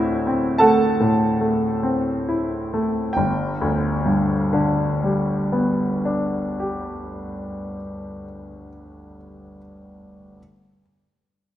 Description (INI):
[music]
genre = classical, romantic nocturne for solo piano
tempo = 22-30 BPM (dotted quarters)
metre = 6/8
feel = rubato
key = G major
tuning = A4 = 440 Hz
[part]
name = clear grand piano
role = solo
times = 0.0-10.4 s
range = G1 to A5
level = -19 LUFS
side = equal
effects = none
[sound]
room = wet recital hall reverb, RT60 1.6 s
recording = none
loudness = -19 LUFS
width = side -12 dB against mid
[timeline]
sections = 0.0-3.1 A section; 3.1-8.1 B section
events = slowing down 0.0-3.1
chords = 0.0 D9; 3.1 G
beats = 0.61 | 3.14 5.62